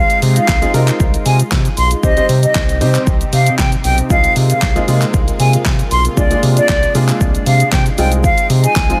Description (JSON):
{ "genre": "dance-pop", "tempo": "116 BPM", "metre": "4/4", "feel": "straight", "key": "unclear", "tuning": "A4 = 438 Hz", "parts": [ { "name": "bright silver concert flute", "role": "melody", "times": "0.0-9.0 s", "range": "D5 to C6", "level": "-19 LUFS", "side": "equal", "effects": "sidechain pumping, tape echo" }, { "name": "clear grand piano", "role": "accompaniment", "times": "0.0-9.0 s", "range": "G3 to C5", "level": "-23 LUFS", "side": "equal", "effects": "sidechain pumping" }, { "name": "lush unison pad", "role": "sustained chords", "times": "0.0-9.0 s", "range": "C3 to G4", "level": "-26 LUFS", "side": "equal", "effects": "chorus, phaser, sidechain pumping" }, { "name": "round analog bass", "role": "bass", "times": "0.0-8.9 s", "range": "B1 to C3", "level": "-17 LUFS", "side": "equal", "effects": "sidechain pumping" }, { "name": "deep house drum kit", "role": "drums", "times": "0.1-9.0 s", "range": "handclaps, hi-hat, kick drum, shaker, snare drum", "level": "-19 LUFS", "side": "equal", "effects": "none" } ], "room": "light reverb, digital ambience", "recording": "none", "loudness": "-13 LUFS", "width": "mono", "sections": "0.0-9.0 A section", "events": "none", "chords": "0.0 Fm7/C; 2.0 Cm; 4.1 Ab6/C; 6.2 Bb7/C; 8.0 Fm7/C" }